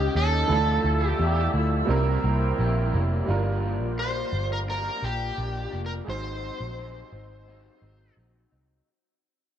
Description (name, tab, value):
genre	indie pop, bedroom pop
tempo	86 BPM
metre	4/4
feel	straight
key	unclear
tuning	A4 = 440 Hz
part	overdriven slide guitar	melody	0.0-8.1 s	G4 to C5	-29 LUFS	equal	lush chorus, tape echo
part	clear upright piano	accompaniment	0.0-8.9 s	Eb3 to C5	-31 LUFS	right 5 dB	cassette tape
part	electric guitar through a small old amp	accompaniment	0.0-8.9 s	G2 to E4	-33 LUFS	left 3 dB	ensemble chorus, warbly pitch drift, tape echo
part	bright large flute ensemble	sustained chords	0.0-3.3 s	C5 to E6	-34 LUFS	right 2 dB	none
part	vintage muted picked electric bass	bass	0.0-8.8 s	F1 to E2	-26 LUFS	equal	none
room	light reverb, studio ambience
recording	echo-heavy mix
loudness	-23 LUFS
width	side -10 dB against mid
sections	0.0-3.3 A section; 3.3-8.9 B section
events	fade-out 3.3-8.9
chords	0.5 Dmadd9; 1.9 C7; 3.3 Gm7; 6.1 Ab7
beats	| 0.49 1.19 1.89 2.58 | 3.28 3.98 4.67 5.37 | 6.07 6.77 7.47 8.16